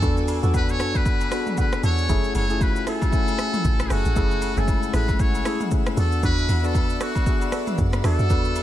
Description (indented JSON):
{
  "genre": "amapiano",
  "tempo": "116 BPM",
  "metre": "4/4",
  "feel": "swing 58% on 16ths",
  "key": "unclear",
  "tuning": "A4 = 438 Hz",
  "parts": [
    { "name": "trumpet with metal mute", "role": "melody", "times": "0.0-8.6 s", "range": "F#4 to C#5", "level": "-28 LUFS", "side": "equal", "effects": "ping-pong delay" },
    { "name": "tine electric piano", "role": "accompaniment", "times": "0.0-8.6 s", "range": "G#3 to G#5", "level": "-28 LUFS", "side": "left 8 dB", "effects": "none" },
    { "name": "airy breathy pad", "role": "sustained chords", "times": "0.0-8.6 s", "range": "A3 to E6", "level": "-35 LUFS", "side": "right 1 dB", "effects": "chorus, sidechain pumping" },
    { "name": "percussive organ stab", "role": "stabs", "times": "0.0-8.6 s", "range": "D4 to A4", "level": "-31 LUFS", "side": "right 3 dB", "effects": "chorus, ping-pong delay" },
    { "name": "deep log drum bass", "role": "bass", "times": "0.0-8.6 s", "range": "F#1 to F#2", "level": "-23 LUFS", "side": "equal", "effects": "none" },
    { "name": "deep house drum kit", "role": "drums", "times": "0.0-8.6 s", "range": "hi-hat, kick drum, rim click, shaker, toms", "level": "-24 LUFS", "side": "right 1 dB", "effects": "overdrive, vintage 12-bit sampler grit" },
    { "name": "agogo bells and woodblock", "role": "percussion", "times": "0.0-8.6 s", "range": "none", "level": "-38 LUFS", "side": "equal", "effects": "none" }
  ],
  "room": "little or no reverb",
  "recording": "none",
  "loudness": "-19 LUFS",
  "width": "side -12 dB against mid",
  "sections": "0.0-8.6 A section",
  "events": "none",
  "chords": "0.0 E9sus4; 2.1 F#m9; 6.0 E9sus4",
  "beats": "| 0.02 0.54 1.06 1.57 | 2.09 2.61 3.13 3.64 | 4.16 4.68 5.20 5.71 | 6.23 6.75 7.26 7.78 | 8.30"
}